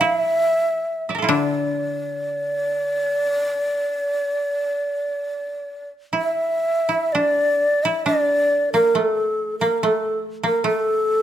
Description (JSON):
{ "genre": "japanese traditional, Japanese chamber music", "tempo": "58-74 BPM", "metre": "4/4", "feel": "rubato", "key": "D hirajoshi", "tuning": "A4 = 435 Hz", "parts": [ { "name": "breathy hollow long shakuhachi", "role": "melody", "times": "0.0-11.2 s", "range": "A4 to E5", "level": "-20 LUFS", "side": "equal", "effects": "none" }, { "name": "koto", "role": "second line", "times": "0.0-11.2 s", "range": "A3 to E5", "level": "-23 LUFS", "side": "right 2 dB", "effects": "none" }, { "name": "koto", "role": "accompaniment", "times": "0.0-3.9 s", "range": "A2 to F3", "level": "-26 LUFS", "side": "left 8 dB", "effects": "none" } ], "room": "light reverb", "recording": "close, detailed microphones", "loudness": "-19 LUFS", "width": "side -11 dB against mid", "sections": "0.0-7.1 A section; 7.1-11.2 B section", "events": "none", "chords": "none", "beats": "| 0.03 0.87 1.71 2.56 | 3.43 4.29 5.17 6.14 | 7.13 8.06 8.96 9.83 | 10.66" }